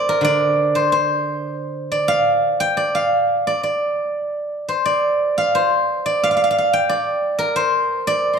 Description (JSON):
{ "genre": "chinese traditional, Chinese solo plucked strings", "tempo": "88 BPM", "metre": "2/4", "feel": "rubato", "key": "unclear", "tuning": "A4 = 440 Hz", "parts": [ { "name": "steel-string zither", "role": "solo", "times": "0.0-8.4 s", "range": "D3 to C6", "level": "-16 LUFS", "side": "right 1 dB", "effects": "none" } ], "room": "light reverb", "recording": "dark, warm production", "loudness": "-16 LUFS", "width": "side -6 dB against mid", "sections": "0.0-8.4 A section", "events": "none", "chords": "none", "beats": "| 0.24 0.93 | 1.60 2.26 | 2.93 3.62 | 4.32 5.02 | 5.71 6.40 | 7.06 7.73" }